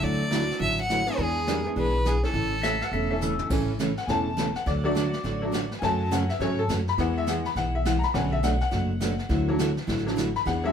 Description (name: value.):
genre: country, western swing.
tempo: 207 BPM.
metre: 4/4.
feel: swing 61% on 8ths.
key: A major.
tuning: A4 = 438 Hz.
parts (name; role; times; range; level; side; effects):
clear fiddle; melody; 0.0-3.2 s; G#4 to F#5; -28 LUFS; equal; none.
picked steel-string acoustic guitar; accompaniment; 0.0-10.7 s; B2 to A4; -29 LUFS; right 2 dB; none.
tack piano; accompaniment; 0.0-10.7 s; D3 to B5; -28 LUFS; left 2 dB; none.
upright bass; bass; 0.0-10.7 s; E1 to G#2; -29 LUFS; equal; none.
jazz brush drum kit; drums; 0.0-10.7 s; brushed snare drum, crash cymbal, hi-hat, kick drum, snare drum, toms; -34 LUFS; equal; none.
clean lap steel guitar; second line; 2.6-3.4 s; A4 to F#5; -29 LUFS; left 4 dB; none.
room: moderate studio ambience, RT60 0.5 s.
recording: band playing live in one room.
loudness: -23 LUFS.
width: side -8 dB against mid.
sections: 0.0-3.5 A section; 3.5-10.7 B section.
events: drum fill 3.2; honky-tonk piano solo 3.5-10.7.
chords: 0.0 Dadd9; 1.2 E7; 2.3 A; 4.7 D; 5.8 F#m; 7.0 E; 8.1 Bm7; 9.3 Dadd9.